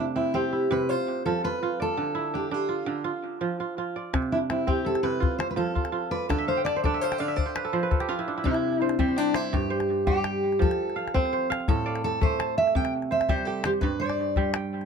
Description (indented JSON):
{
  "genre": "west african traditional, West African string and xylophone music",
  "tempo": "111 BPM (dotted quarters)",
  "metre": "12/8",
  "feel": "straight",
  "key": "C major",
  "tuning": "A4 = 440 Hz",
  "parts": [
    { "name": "fingerpicked steel-string acoustic guitar", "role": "melody", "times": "0.0-14.5 s", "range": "C4 to G5", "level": "-26 LUFS", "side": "equal", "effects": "none" },
    { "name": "kora", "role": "arpeggios", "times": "0.0-14.9 s", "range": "G2 to A5", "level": "-28 LUFS", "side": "right 4 dB", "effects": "tape echo" },
    { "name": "calabash", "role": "percussion", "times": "4.1-14.9 s", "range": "none", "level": "-27 LUFS", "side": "left 3 dB", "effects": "none" }
  ],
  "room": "little or no reverb",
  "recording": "close, detailed microphones",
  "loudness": "-24 LUFS",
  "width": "side -6 dB against mid",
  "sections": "0.0-8.4 A section; 8.4-14.9 B section",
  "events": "kora fill 6.4-8.4; steel-string acoustic guitar solo 8.4-14.9",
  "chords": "0.0 C; 0.9 F5; 2.0 Dm; 4.1 C; 5.2 F; 6.3 N.C.; 8.4 C; 9.5 Gsus4; 10.6 F; 11.7 Am; 12.8 C5; 13.8 G5"
}